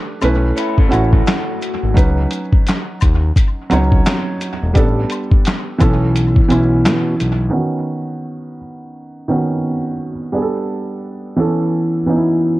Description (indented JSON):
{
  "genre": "lo-fi hip hop",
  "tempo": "86 BPM",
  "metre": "4/4",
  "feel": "swing 59% on 16ths",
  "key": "C# minor",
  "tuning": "A4 = 441 Hz",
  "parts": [
    { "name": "felt-muted upright piano", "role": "accompaniment", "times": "0.0-12.6 s", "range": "D#3 to C#5", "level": "-18 LUFS", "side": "right 1 dB", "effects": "low-pass filter" },
    { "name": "smooth synth bass", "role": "bass", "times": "0.2-7.5 s", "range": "E1 to B2", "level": "-16 LUFS", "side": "equal", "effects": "none" },
    { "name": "lo-fi sampler-style drum kit", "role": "drums", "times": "0.2-7.4 s", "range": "handclaps, hi-hat, kick drum, snare drum", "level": "-15 LUFS", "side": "equal", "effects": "vintage 12-bit sampler grit" },
    { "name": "maracas and woodblock", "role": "percussion", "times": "0.2-7.4 s", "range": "none", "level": "-32 LUFS", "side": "left 7 dB", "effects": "tape echo" },
    { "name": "electric guitar through a small old amp", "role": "second line", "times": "0.6-1.9 s", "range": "A3 to C#5", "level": "-24 LUFS", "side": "left 3 dB", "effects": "low-pass filter, tape echo" }
  ],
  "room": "light reverb",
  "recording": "echo-heavy mix, low-pass filter",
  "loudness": "-14 LUFS",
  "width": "side -18 dB against mid",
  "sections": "0.0-7.5 A section; 7.5-12.6 B section",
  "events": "none",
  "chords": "0.2 B9sus4; 2.0 C#9sus4; 4.8 A9sus4; 5.8 B9sus4; 7.5 C#9sus4; 10.3 A9sus4; 11.4 B9sus4",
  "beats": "0.57 1.27 | 1.97 2.67 3.36 4.06 | 4.76 5.46 6.15 6.85 | 7.55 8.25 8.95 9.64 | 10.34 11.04 11.74 12.43"
}